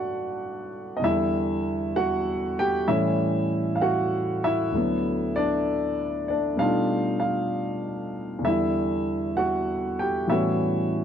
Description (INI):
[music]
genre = solo jazz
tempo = 65 BPM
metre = 4/4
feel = swing 68% on 8ths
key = unclear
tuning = A4 = 441 Hz
[part]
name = warm baby grand piano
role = solo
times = 0.0-11.0 s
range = D2 to G5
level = -23 LUFS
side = equal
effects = none
[sound]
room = light reverb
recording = dark, warm production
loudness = -23 LUFS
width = side -8 dB against mid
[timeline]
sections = 0.0-11.0 A section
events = none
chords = 0.0 Gmaj7; 1.0 Em9; 2.9 A7; 4.7 D6; 6.6 B7alt; 8.4 Em9; 10.3 A13